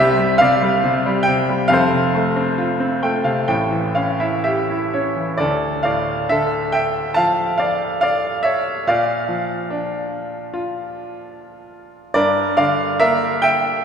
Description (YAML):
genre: classical, lyrical solo piano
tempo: 60-74 BPM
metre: 4/4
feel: rubato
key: D minor from 5.4 s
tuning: A4 = 440 Hz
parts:
  - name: bright grand piano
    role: solo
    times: 0.0-13.8 s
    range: F1 to A5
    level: -16 LUFS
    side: equal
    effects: none
room: wet church reverb, RT60 3.3 s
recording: recorded in a church or concert hall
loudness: -16 LUFS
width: side -7 dB against mid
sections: 0.0-5.4 A section; 5.4-13.8 B section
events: grand piano fill 2.6-5.4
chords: 0.0 Cadd9; 1.7 F; 3.5 A7; 5.4 Dmadd9; 8.9 Bb; 12.1 Gm